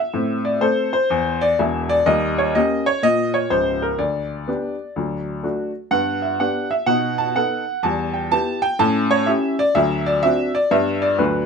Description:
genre	jazz, stride piano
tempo	125 BPM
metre	4/4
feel	swing 65% on 8ths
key	G major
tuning	A4 = 440 Hz
part	bright upright piano	solo	0.0-11.5 s	Db1 to A5	-17 LUFS	equal	none
room	moderate club reverb, RT60 0.6 s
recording	none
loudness	-17 LUFS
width	side -5 dB against mid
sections	0.0-11.5 A section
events	none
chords	0.1 Am; 2.1 Eb7; 4.0 G/D; 5.0 D; 5.9 G; 6.9 B7; 7.8 Em; 8.8 A7; 9.8 D7; 10.7 G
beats	| 0.15 0.63 1.11 1.59 | 2.07 2.55 3.03 3.51 | 3.99 4.47 4.96 5.44 | 5.92 6.40 6.88 7.36 | 7.84 8.32 8.80 9.28 | 9.76 10.24 10.72 11.20

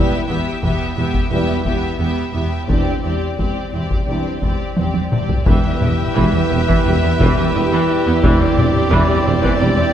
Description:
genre	cinematic, epic orchestral film score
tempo	87 BPM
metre	4/4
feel	straight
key	E minor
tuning	A4 = 438 Hz
part	rich symphonic violin section	melody	0.0-9.9 s	D5 to E5	-27 LUFS	left 4 dB	none
part	rich symphonic violin section	second line	0.0-9.9 s	G4	-27 LUFS	left 2 dB	none
part	rich studio viola section	accompaniment	0.0-9.8 s	E3 to C4	-24 LUFS	right 1 dB	none
part	dark trombone section	sustained chords	0.0-9.9 s	E3 to G3	-26 LUFS	right 1 dB	none
part	mellow French horn section	sustained chords	0.0-9.9 s	B3 to E4	-26 LUFS	right 1 dB	none
part	rich studio double bass section	bass	0.0-9.7 s	E1	-23 LUFS	right 1 dB	none
part	rich symphonic cello section	bass	0.0-9.8 s	E2	-22 LUFS	right 1 dB	none
part	taiko ensemble	drums	0.6-9.9 s	none	-20 LUFS	left 1 dB	none
part	chamber organ, sparkling flutes	sustained chords	5.5-9.9 s	D4 to E5	-26 LUFS	left 1 dB	none
part	dark trumpet section	stabs	5.5-9.9 s	B4 to D5	-22 LUFS	right 4 dB	none
part	mellow tuba	bass	5.5-9.7 s	E1	-23 LUFS	equal	none
room	wet scoring stage reverb, RT60 1.7 s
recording	heard from further back in the room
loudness	-14 LUFS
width	side -10 dB against mid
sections	0.0-5.5 A section; 5.5-9.9 A section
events	drum fill 4.8-5.5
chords	0.0 Em; 2.7 Cadd9/E; 5.5 Em; 8.2 Cadd9/E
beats	0.62 1.30 1.99 | 2.68 3.38 4.08 4.78 | 5.48 6.17 6.86 7.55 | 8.24 8.92 9.61

